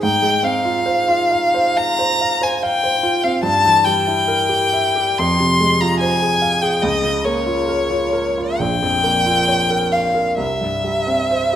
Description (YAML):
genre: classical, romantic duo for violin and grand piano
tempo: 69 BPM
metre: 4/4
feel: uneven beats, rubato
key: F minor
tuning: A4 = 441 Hz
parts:
  - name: clear violin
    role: melody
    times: 0.0-11.6 s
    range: Db5 to C6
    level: -16 LUFS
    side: left 2 dB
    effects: none
  - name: clear grand piano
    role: accompaniment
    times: 0.0-11.6 s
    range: Bb1 to F5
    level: -20 LUFS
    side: right 2 dB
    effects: none
room: wet recital hall reverb, RT60 1.4 s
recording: none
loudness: -15 LUFS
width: side -10 dB against mid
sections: 0.0-11.6 A section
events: none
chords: 0.0 Fm/Ab; 3.4 Edim/G; 5.2 Fm; 6.8 Bbm/Db; 8.6 Bbm; 10.4 C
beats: | 0.03 0.85 1.77 2.62 | 3.43 4.26 5.17 6.00 | 6.82 7.67 8.59 9.48 | 10.39 11.31